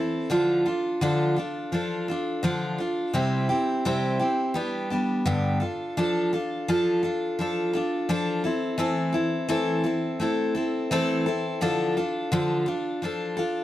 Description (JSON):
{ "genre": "rock", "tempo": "85 BPM", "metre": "4/4", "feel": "straight", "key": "D minor", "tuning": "A4 = 440 Hz", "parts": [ { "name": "picked steel-string acoustic guitar", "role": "solo", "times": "0.0-13.6 s", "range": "G2 to A4", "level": "-23 LUFS", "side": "equal", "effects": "none" } ], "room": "light reverb", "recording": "none", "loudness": "-23 LUFS", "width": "side -14 dB against mid", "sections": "0.0-13.6 A section", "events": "none", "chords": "0.3 Dm; 3.1 C; 4.6 G; 5.6 Dm/F; 8.4 Am/E; 11.6 Dm", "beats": "| 0.31 1.02 1.73 2.44 | 3.14 3.85 4.56 5.26 | 5.97 6.68 7.38 8.09 | 8.79 9.50 10.20 10.91 | 11.61 12.31 13.02" }